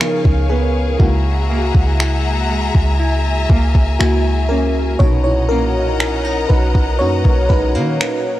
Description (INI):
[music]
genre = contemporary R&B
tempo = 60 BPM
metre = 4/4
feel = straight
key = unclear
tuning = A4 = 439 Hz
[part]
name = FM electric piano with soft pad layer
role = accompaniment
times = 0.0-8.4 s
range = A#2 to C#5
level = -20 LUFS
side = equal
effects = chorus
[part]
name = warm symphonic string section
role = sustained chords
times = 0.0-8.4 s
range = G#4 to A#5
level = -24 LUFS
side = left 4 dB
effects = none
[part]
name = nylon-string guitar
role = arpeggios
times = 0.0-8.4 s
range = B2 to E4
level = -25 LUFS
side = right 1 dB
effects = analog delay
[part]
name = smooth R&B drum kit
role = drums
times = 0.0-8.2 s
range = finger snaps, kick drum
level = -15 LUFS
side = equal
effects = none
[part]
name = clean 808-style bass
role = bass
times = 0.3-8.0 s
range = B1 to D#3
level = -17 LUFS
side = equal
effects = none
[sound]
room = small room ambience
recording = dry, gritty hardware recording, cassette tape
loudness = -13 LUFS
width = side -14 dB against mid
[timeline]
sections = 0.0-8.4 A section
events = FM electric piano solo 0.0-8.4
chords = 0.0 C#7; 1.0 F#9/C#; 5.0 Bmaj7